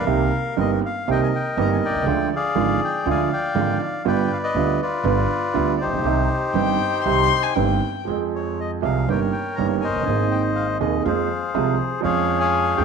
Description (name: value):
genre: tango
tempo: 121 BPM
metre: 4/4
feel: rubato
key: C minor, F minor from 8.1 s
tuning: A4 = 440 Hz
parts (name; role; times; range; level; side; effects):
- bandoneon; melody; 0.0-12.8 s; Eb4 to Bb5; -23 LUFS; left 4 dB; none
- warm baby grand piano; accompaniment; 0.0-12.8 s; Eb1 to Ab4; -22 LUFS; right 8 dB; none
- upright bass; bass; 0.0-12.8 s; F1 to F2; -28 LUFS; left 1 dB; none
- warm violin; second line; 6.5-8.1 s; G5 to C6; -23 LUFS; left 13 dB; none
room: moderate echo chamber reverb, RT60 1.2 s, small room reverb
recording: 1960s-style stereo with parts hard left and right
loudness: -19 LUFS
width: side -5 dB against mid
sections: 0.0-8.1 A section; 8.1-12.8 B section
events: none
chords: 0.1 Cm7; 2.1 Ddim; 4.1 G7; 6.0 Cm; 8.1 Fm; 9.1 Eb7/G; 10.1 Abadd9; 11.1 Fm; 12.0 Db/F